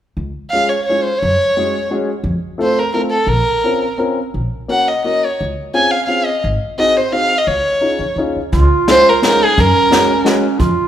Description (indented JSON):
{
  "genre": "musette waltz",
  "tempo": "173 BPM",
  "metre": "3/4",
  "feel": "rubato",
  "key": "Db major",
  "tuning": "A4 = 440 Hz",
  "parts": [
    { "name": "upright bass", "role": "bass", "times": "0.2-10.7 s", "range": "Ab1 to Gb2", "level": "-18 LUFS", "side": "equal", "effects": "none" },
    { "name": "dark violin", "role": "melody", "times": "0.5-10.3 s", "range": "Ab4 to Ab5", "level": "-14 LUFS", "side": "equal", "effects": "none" },
    { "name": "dark upright piano", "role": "accompaniment", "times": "0.5-10.4 s", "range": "Ab3 to Bb4", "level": "-20 LUFS", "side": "left 1 dB", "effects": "none" },
    { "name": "warm clarinet", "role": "second line", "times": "8.5-10.9 s", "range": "Db4 to F4", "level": "-18 LUFS", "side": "right 5 dB", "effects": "none" },
    { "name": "jazz brush drum kit", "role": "drums", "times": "8.5-10.7 s", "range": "hi-hat, kick drum, snare drum", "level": "-18 LUFS", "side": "equal", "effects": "none" }
  ],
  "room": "moderate recital hall reverb, RT60 1.7 s",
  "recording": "recorded in a church or concert hall",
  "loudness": "-13 LUFS",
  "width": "side -10 dB against mid",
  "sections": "0.2-8.5 A section; 8.5-10.9 A section",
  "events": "none",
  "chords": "0.2 Db; 1.2 Gbsus2; 2.2 F; 3.3 Bbmadd9; 4.3 Gb/Bb; 5.4 Dbmaj7; 6.4 Ab7; 7.5 Dbadd9; 8.5 Db; 9.6 Gbsus2",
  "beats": "| 0.16 0.52 0.87 | 1.22 1.56 1.90 | 2.24 2.58 2.93 | 3.28 3.63 3.99 | 4.34 4.70 5.05 | 5.41 5.75 6.10 | 6.44 6.78 7.12 | 7.47 7.82 8.17 | 8.53 8.88 9.24 | 9.58 9.93 10.26 | 10.60"
}